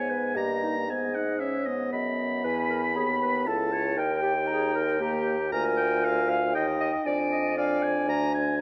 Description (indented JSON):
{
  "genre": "quick classical-period movement for wind quintet",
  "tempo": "116 BPM",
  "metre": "3/4",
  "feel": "straight",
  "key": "unclear",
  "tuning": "A4 = 440 Hz",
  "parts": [
    { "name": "concert flute", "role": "melody", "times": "0.0-8.6 s", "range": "C#5 to B5", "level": "-35 LUFS", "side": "equal", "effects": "none" },
    { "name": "clear oboe", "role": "second line", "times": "0.0-8.6 s", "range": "D5 to B5", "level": "-33 LUFS", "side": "equal", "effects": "none" },
    { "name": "mellow French horn", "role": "accompaniment", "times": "0.0-8.6 s", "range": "A#3 to F4", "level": "-35 LUFS", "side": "equal", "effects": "none" },
    { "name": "warm clarinet", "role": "accompaniment", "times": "0.0-8.3 s", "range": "D#4 to G5", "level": "-33 LUFS", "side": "equal", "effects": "none" },
    { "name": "mellow bassoon", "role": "bass", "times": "0.0-8.6 s", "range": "C#2 to G#2", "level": "-33 LUFS", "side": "equal", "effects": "none" }
  ],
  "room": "moderate concert hall reverb, RT60 1.9 s",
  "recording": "close, detailed microphones",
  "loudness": "-27 LUFS",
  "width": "mono",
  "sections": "0.0-8.6 A section",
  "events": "none",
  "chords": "0.4 D#/G; 0.9 G#m; 2.4 E; 3.5 A/C#; 4.0 D#; 5.5 Bb7/D; 6.5 Eb; 7.1 Ddim/F"
}